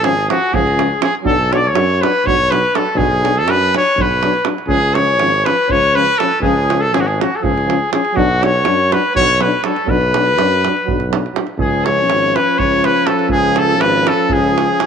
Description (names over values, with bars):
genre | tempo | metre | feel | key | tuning
balkan folk, Balkan brass band | 244 BPM (eighths) | 7/8 | straight | unclear | A4 = 440 Hz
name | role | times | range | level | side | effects
bright trumpet | melody | 0.0-14.9 s | F#4 to D5 | -15 LUFS | equal | none
mellow clarinet | second line | 0.0-14.9 s | F#4 to D5 | -24 LUFS | left 12 dB | none
mellow euphonium | accompaniment | 0.0-14.9 s | C#4 to D4 | -22 LUFS | left 12 dB | none
mellow euphonium | accompaniment | 0.0-14.9 s | E#3 to F#3 | -24 LUFS | right 11 dB | none
warm tuba | bass | 0.0-14.7 s | G#1 to F#2 | -20 LUFS | equal | none
davul | percussion | 0.0-14.9 s | none | -22 LUFS | right 6 dB | none
room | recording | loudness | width
moderate spring reverb, RT60 2.5 s | 1960s-style stereo with parts hard left and right | -12 LUFS | side -7 dB against mid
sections
0.0-11.6 A section; 11.6-14.9 A section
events
none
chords
0.0 C#; 1.3 Bm; 4.7 C#; 8.1 Bm; 11.6 C#